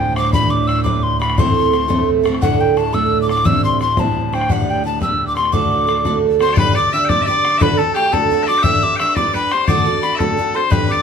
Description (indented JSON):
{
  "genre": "celtic folk, Celtic jig",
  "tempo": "116 BPM (dotted quarters)",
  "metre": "6/8",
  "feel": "straight",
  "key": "D mixolydian",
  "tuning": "A4 = 440 Hz",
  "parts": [
    { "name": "mellow hollow tin whistle", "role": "melody", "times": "0.0-11.0 s", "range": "F#5 to E6", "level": "-18 LUFS", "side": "left 2 dB", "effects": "none" },
    { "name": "picked steel-string acoustic guitar", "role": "accompaniment", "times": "0.0-11.0 s", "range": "A2 to C5", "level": "-19 LUFS", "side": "right 6 dB", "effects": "none" },
    { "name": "rich studio string section", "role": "drone", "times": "0.0-6.6 s", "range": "D2 to A2", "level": "-23 LUFS", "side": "right 2 dB", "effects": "none" },
    { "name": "bodhran", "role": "percussion", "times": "0.0-10.9 s", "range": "none", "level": "-20 LUFS", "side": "left 3 dB", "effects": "none" },
    { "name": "loud bright bagpipes", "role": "second line", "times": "6.4-11.0 s", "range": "G4 to G5", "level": "-21 LUFS", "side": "left 4 dB", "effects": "none" }
  ],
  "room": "wet studio reverb, RT60 0.7 s",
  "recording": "band playing live in one room",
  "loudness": "-14 LUFS",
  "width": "side -7 dB against mid",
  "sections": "0.0-6.6 A section; 6.6-11.0 B section",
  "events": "none",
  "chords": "0.3 G; 1.4 Am; 2.4 Dsus2; 3.5 Cadd9; 4.5 G; 5.5 D; 6.6 G; 7.6 D; 8.7 G; 9.7 D",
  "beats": "| 0.34 0.86 | 1.38 1.90 | 2.42 2.94 | 3.46 3.98 | 4.50 5.02 | 5.54 6.06 | 6.58 7.09 | 7.61 8.13 | 8.65 9.17 | 9.69 10.21 | 10.72"
}